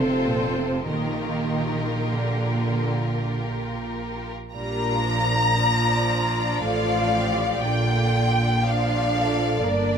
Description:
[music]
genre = classical, slow romantic movement for string orchestra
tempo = 48-61 BPM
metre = 3/4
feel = rubato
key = Bb major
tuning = A4 = 440 Hz
[part]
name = warm studio violin section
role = melody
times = 0.0-10.0 s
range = Bb4 to Bb5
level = -26 LUFS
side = left 2 dB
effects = none
[part]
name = rich studio violin section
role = second line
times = 0.0-10.0 s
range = D4 to D5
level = -30 LUFS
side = equal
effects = none
[part]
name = rich studio viola section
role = accompaniment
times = 0.0-10.0 s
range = D3 to F4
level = -29 LUFS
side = right 2 dB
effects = none
[part]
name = rich studio cello section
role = bass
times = 0.0-10.0 s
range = G2 to Eb3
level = -29 LUFS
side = right 1 dB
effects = none
[part]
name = rich studio double bass section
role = bass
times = 0.0-10.0 s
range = F1 to Bb1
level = -27 LUFS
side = right 2 dB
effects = none
[sound]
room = light reverb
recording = close, detailed microphones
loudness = -21 LUFS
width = side -7 dB against mid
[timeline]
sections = 0.0-4.5 A section; 4.5-10.0 B section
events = none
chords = 0.0 F; 0.9 Bb; 6.6 F/A; 7.6 Bb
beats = | 0.89 2.13 3.37 | 4.54 5.59 6.63 | 7.65 8.65 9.64

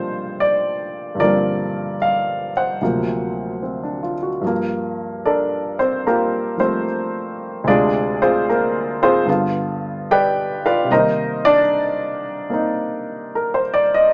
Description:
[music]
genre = solo jazz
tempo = 74 BPM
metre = 4/4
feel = swing 67% on 8ths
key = G minor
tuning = A4 = 440 Hz
[part]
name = warm baby grand piano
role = solo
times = 0.0-14.1 s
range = D2 to G5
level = -20 LUFS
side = equal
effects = none
[sound]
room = moderate studio reverb, RT60 0.7 s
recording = nothing above 10.8 kHz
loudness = -20 LUFS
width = mono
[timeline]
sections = 0.0-4.4 A section; 4.4-14.1 B section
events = grand piano solo 4.4-14.1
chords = 0.0 Gm11; 2.8 D7alt; 4.4 Gm9; 7.7 Dm7b5; 9.3 G7; 10.9 Cm7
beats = 0.39 | 1.19 2.00 2.81 3.62 | 4.42 5.23 6.04 6.85 | 7.66 8.46 9.27 10.08 | 10.89 11.70 12.51 13.32 | 14.13

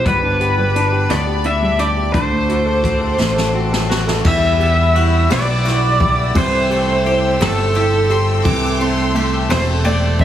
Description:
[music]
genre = six-eight pop ballad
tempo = 57 BPM (dotted quarters)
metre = 6/8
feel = straight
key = unclear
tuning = A4 = 440 Hz
[part]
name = overdriven slide guitar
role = melody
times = 0.0-10.2 s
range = A4 to E5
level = -18 LUFS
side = equal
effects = tape echo
[part]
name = warm upright piano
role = accompaniment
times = 0.0-10.2 s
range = C3 to A4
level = -23 LUFS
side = right 3 dB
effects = none
[part]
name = rich studio string section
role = sustained chords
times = 0.0-10.2 s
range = G3 to E6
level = -26 LUFS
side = left 1 dB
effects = none
[part]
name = direct-recorded clean electric guitar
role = arpeggios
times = 0.1-10.2 s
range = E3 to G4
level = -26 LUFS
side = left 6 dB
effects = lush chorus
[part]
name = fingered electric bass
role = bass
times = 0.1-10.2 s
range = E1 to E2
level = -18 LUFS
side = equal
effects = none
[part]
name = jazz brush drum kit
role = drums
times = 0.1-10.2 s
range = crash cymbal, hi-hat, kick drum, ride cymbal, rim click, snare drum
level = -21 LUFS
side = equal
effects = none
[part]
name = warm studio violin section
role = second line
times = 8.1-9.3 s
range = C6 to D6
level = -25 LUFS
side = equal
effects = none
[sound]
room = light reverb, small room ambience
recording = heavily compressed radio sound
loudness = -13 LUFS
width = side -10 dB against mid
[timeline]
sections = 0.0-4.2 A section; 4.2-10.2 B section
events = drum fill 3.2-4.2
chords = 0.1 G; 2.1 D7; 4.2 Emadd9; 6.4 C6; 8.4 Am7/C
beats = | 0.06 1.10 | 2.14 3.19 | 4.25 5.30 | 6.36 7.40 | 8.45 9.49

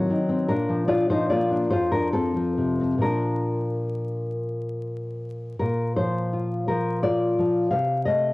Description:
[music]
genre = romantic piece for solo classical guitar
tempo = 43-58 BPM (dotted quarters)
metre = 6/8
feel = rubato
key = Bb major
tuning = A4 = 439 Hz
[part]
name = nylon-string guitar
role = solo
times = 0.0-8.3 s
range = F2 to F5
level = -22 LUFS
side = left 1 dB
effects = none
[sound]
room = light reverb, small room ambience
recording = home recording on cassette, vinyl crackle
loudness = -22 LUFS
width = side -20 dB against mid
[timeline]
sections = 0.0-5.6 A section; 5.6-8.3 B section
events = none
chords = 0.0 Adim7; 0.5 Bb; 1.7 F; 3.0 Bb; 7.7 Adim/C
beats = | 0.50 1.69 | 3.02 4.35 | 5.60 6.69 | 7.73

